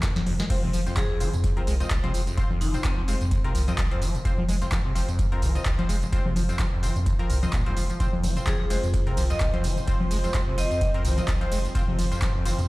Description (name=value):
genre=acid house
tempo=128 BPM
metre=4/4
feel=swing 56% on 16ths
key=F minor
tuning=A4 = 441 Hz
part: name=lush unison pad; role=sustained chords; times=0.0-0.5, 8.0-12.7 s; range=F3 to C5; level=-35 LUFS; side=right 1 dB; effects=chorus, sidechain pumping
part: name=acid bass, saw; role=riff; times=0.0-12.6 s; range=F1 to Ab3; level=-31 LUFS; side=equal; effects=overdrive, wide subtle chorus, tape echo
part: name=booming analog drum machine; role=drums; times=0.0-12.7 s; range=congas, crash cymbal, handclaps, hi-hat, ride cymbal, snare drum, tambourine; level=-31 LUFS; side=left 1 dB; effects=none
part: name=electronic kick drum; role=drums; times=0.0-12.3 s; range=none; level=-26 LUFS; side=equal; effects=none
part: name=warm sub bass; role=bass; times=0.3-12.7 s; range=F1 to F2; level=-26 LUFS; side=equal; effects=sidechain pumping
part: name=band-passed chord stab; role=stabs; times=0.5-12.6 s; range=C4 to Eb5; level=-34 LUFS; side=left 2 dB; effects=chorus, tape echo
part: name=vibraphone with hard mallets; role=melody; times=1.0-3.3, 8.5-10.8 s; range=C4 to Eb5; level=-33 LUFS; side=left 1 dB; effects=dub echo
room=digital ambience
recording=played on a big sound system in a bare room, large studio reverb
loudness=-22 LUFS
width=side -20 dB against mid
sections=0.5-12.7 A section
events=drum fill 0.0-0.5; drop 0.5-12.7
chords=0.0 F5